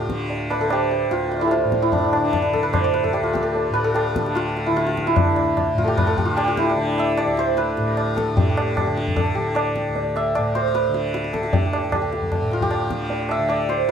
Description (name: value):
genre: indian classical, Hindustani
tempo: 150 BPM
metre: 4/4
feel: straight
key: D raga bhimpalasi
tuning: A4 = 440 Hz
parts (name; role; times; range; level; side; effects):
- santur; melody; 0.0-13.9 s; D4 to A5; -21 LUFS; equal; none
- tanpura; drone; 0.0-13.9 s; D2 to D3; -26 LUFS; equal; none
- tabla; percussion; 0.1-13.9 s; none; -25 LUFS; equal; none
room: moderate small room reverb, RT60 0.6 s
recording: none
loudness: -18 LUFS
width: side -8 dB against mid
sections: 0.0-8.4 A section; 8.4-13.9 B section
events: speeding up 0.0-13.9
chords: none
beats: | 0.30 0.71 1.12 1.52 | 1.93 2.34 2.74 3.15 | 3.55 3.96 4.36 4.76 | 5.17 5.57 5.97 6.37 | 6.77 7.17 7.57 7.97 | 8.37 8.76 9.16 9.55 | 9.95 10.35 10.74 11.13 | 11.53 11.92 12.31 12.70 | 13.09 13.48 13.87